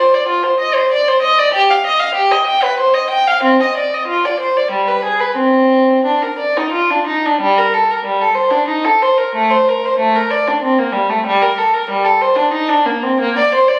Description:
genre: classical, baroque-style suite movement for unaccompanied violin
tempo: 93 BPM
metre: 3/4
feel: uneven beats, rubato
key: C minor, G minor from 7.4 s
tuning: A4 = 440 Hz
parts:
  - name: dark violin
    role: solo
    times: 0.0-13.8 s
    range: G3 to G5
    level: -14 LUFS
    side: equal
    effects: none
room: moderate recital hall reverb, RT60 1.7 s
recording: recorded on a phone in the room, club reverb, compression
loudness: -14 LUFS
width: mono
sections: 0.0-7.4 A section; 7.4-13.8 A section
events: none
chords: none

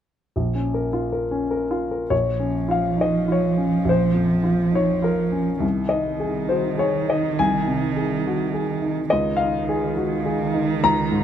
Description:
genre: neoclassical piano and strings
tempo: 103 BPM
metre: 3/4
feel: rubato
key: Bb minor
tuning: A4 = 440 Hz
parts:
  - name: warm grand piano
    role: accompaniment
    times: 0.4-11.2 s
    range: Bb1 to Bb5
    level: -21 LUFS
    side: left 2 dB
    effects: none
  - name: warm cello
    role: second line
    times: 2.1-11.2 s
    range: Eb3 to F3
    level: -23 LUFS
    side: right 5 dB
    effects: none
room: light reverb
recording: close, detailed microphones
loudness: -19 LUFS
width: side -9 dB against mid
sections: 0.3-2.1 A section; 2.1-11.2 B section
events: none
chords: 0.3 Bbm; 5.6 Ab/C; 9.1 Dbadd9

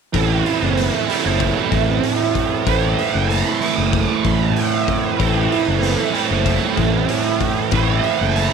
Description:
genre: psychedelic rock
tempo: 95 BPM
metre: 4/4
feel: straight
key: A dorian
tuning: A4 = 440 Hz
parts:
  - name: overdriven electric guitar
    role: riff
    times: 0.1-8.5 s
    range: A2 to E4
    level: -18 LUFS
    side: right 12 dB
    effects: flanger
  - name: fuzz fingered electric bass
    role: bass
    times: 0.1-8.5 s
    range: F#1 to A1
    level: -20 LUFS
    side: left 2 dB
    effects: overdrive
  - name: raw garage drum kit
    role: drums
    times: 0.1-8.5 s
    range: hi-hat, kick drum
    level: -26 LUFS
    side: left 6 dB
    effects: none
  - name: tanpura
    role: drone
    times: 0.2-8.5 s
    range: A2 to A3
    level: -24 LUFS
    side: left 3 dB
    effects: none
room: light reverb, small room ambience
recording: 1960s-style stereo with parts hard left and right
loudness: -16 LUFS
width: side -6 dB against mid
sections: 0.1-8.5 A section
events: none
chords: 0.1 Am

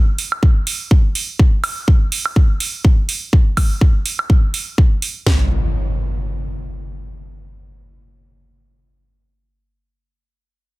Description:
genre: bass house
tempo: 124 BPM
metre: 4/4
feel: swing 56% on 16ths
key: none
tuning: none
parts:
  - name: electronic hi-hat and woodblock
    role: drums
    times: 0.2-5.1 s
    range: none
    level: -22 LUFS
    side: right 4 dB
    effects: studio reverb
  - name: house drum kit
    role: drums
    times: 0.4-5.4 s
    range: kick drum, snare drum, toms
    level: -12 LUFS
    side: equal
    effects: studio reverb
  - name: impact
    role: sound effects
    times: 5.3-9.7 s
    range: none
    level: -22 LUFS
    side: equal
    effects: none
room: little or no reverb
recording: dense, heavily limited modern master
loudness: -14 LUFS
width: side -21 dB against mid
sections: 0.0-5.3 A section; 5.3-9.1 B section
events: none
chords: none

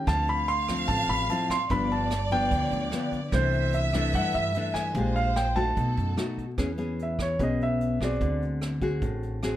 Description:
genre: bossa nova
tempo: 148 BPM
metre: 4/4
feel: straight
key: unclear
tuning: A4 = 440 Hz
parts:
  - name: warm concert grand piano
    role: melody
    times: 0.0-8.4 s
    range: C5 to C6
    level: -28 LUFS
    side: right 1 dB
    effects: none
  - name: nylon-string guitar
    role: accompaniment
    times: 0.0-9.6 s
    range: G2 to G#4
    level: -29 LUFS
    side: left 2 dB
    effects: none
  - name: warm symphonic violin section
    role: second line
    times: 0.1-6.4 s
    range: A4 to F5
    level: -34 LUFS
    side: right 3 dB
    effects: none
  - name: upright bass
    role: bass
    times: 0.1-9.6 s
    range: G1 to G2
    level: -30 LUFS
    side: right 1 dB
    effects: none
  - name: vintage brush drum kit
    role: drums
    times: 0.1-9.5 s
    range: hi-hat, kick drum, rim click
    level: -34 LUFS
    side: right 2 dB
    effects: none
room: moderate studio reverb, RT60 0.8 s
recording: none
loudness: -24 LUFS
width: side -12 dB against mid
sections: 0.0-6.6 A section; 6.6-9.6 B section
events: grand piano solo 6.6-9.6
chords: 0.1 Dm9; 1.7 G7; 3.3 C69; 5.0 Bb13; 5.8 B7; 6.6 E6; 8.2 D7#11

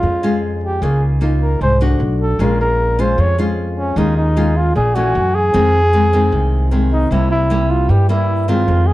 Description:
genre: bossa nova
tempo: 153 BPM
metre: 4/4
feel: straight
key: unclear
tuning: A4 = 440 Hz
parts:
  - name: mellow flugelhorn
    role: melody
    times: 0.0-8.9 s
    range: Db4 to Db5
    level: -18 LUFS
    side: equal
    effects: none
  - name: nylon-string guitar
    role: accompaniment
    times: 0.0-8.9 s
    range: F2 to Gb4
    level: -19 LUFS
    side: left 1 dB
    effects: none
  - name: upright bass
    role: bass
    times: 0.0-8.9 s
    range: Bb1 to G2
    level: -16 LUFS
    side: equal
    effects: none
room: light reverb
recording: dark, warm production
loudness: -13 LUFS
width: side -16 dB against mid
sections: 0.0-8.9 A section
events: none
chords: 0.0 Bbm7 (rootless); 0.8 Db69; 2.0 Bm7; 2.4 Bbm7; 4.0 Eb9sus4; 5.1 Gbm7; 5.5 Fm7; 7.1 C7

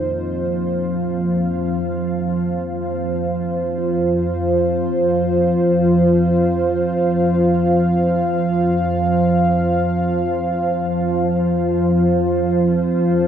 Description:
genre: dark ambient drone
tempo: free time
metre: none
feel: none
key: unclear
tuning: A4 = 439 Hz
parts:
  - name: dark analog pad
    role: sustained chords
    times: 0.0-13.3 s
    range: Bb3 to F5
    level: -20 LUFS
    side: equal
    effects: chorus
  - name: bronze singing bowl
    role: arpeggios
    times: 0.0-11.1 s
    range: Bb3 to F4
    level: -33 LUFS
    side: left 3 dB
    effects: none
  - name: organ-like drone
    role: drone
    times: 0.0-13.3 s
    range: F2 to F3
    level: -18 LUFS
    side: right 1 dB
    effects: ensemble chorus, built-in reverb
room: wet huge ambient reverb, RT60 8.1 s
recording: worn, warbling old tape, cassette tape, warbly pitch drift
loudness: -16 LUFS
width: side -9 dB against mid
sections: 0.0-13.3 A section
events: none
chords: 0.0 Bbsus2/F

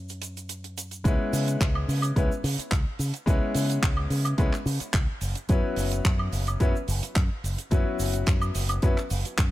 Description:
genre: nu-disco, nu disco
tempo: 108 BPM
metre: 4/4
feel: straight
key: C# minor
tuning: A4 = 440 Hz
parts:
  - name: clear grand piano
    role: accompaniment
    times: 0.0-9.0 s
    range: F#3 to B4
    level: -31 LUFS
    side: left 2 dB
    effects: tape echo
  - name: fingered electric bass with an envelope filter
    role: bass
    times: 0.0-9.5 s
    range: F#1 to C#3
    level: -28 LUFS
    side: equal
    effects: none
  - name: damped 70s drum kit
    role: drums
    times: 0.1-9.5 s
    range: handclaps, hi-hat, shaker, woodblock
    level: -31 LUFS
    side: right 2 dB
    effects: none
  - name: electronic kick drum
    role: drums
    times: 1.1-9.5 s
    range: none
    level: -24 LUFS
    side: equal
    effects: none
room: studio reverb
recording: none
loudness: -23 LUFS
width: side -15 dB against mid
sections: 0.0-1.1 A section; 1.1-9.5 B section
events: drop 1.1-9.5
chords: 0.0 F#7sus4; 1.1 C#m7; 5.2 F#7sus4

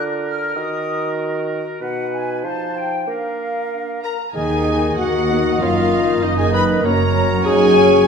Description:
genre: cinematic, playful, whimsical film cue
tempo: 96 BPM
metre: 2/4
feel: straight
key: Eb minor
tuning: A4 = 440 Hz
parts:
  - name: clear oboe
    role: second line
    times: 0.0-8.1 s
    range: Bb4 to Eb5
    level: -28 LUFS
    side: right 3 dB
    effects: none
  - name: flute section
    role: second line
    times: 0.0-8.1 s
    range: Eb5 to F6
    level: -27 LUFS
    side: left 3 dB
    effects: none
  - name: mellow clarinet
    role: second line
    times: 0.0-8.1 s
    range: D4 to Cb5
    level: -20 LUFS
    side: left 2 dB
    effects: none
  - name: mellow bassoon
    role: accompaniment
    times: 0.0-8.1 s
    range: B2 to Bb3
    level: -24 LUFS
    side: right 1 dB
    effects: none
  - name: muted studio violin section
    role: melody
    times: 4.0-8.1 s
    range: Eb5 to Cb6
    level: -24 LUFS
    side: left 3 dB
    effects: none
  - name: muted chamber violin section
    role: second line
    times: 4.0-8.1 s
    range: Eb5 to Cb6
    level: -29 LUFS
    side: left 2 dB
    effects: none
  - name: muted studio viola section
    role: accompaniment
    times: 4.4-8.1 s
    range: Bb3 to Eb4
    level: -26 LUFS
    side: right 2 dB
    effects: none
  - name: warm French horn section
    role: sustained chords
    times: 4.4-8.1 s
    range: Gb3 to Eb4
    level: -23 LUFS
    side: left 2 dB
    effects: none
  - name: muted studio cello section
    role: bass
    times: 4.4-8.0 s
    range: Gb2 to Eb3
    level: -23 LUFS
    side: right 4 dB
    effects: none
  - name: muted studio double bass section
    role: bass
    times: 4.4-8.0 s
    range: Gb1 to Eb2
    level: -23 LUFS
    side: right 4 dB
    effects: none
room: wet scoring stage reverb, RT60 1.4 s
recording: minimal, uncompressed stereo recording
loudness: -16 LUFS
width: side -6 dB against mid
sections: 0.0-4.4 A section; 4.4-8.1 B section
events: none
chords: 0.0 Bb/D; 0.6 Ebm; 1.8 B; 2.4 F7; 3.1 Bb; 4.4 Ebm; 5.6 Ebm/Gb

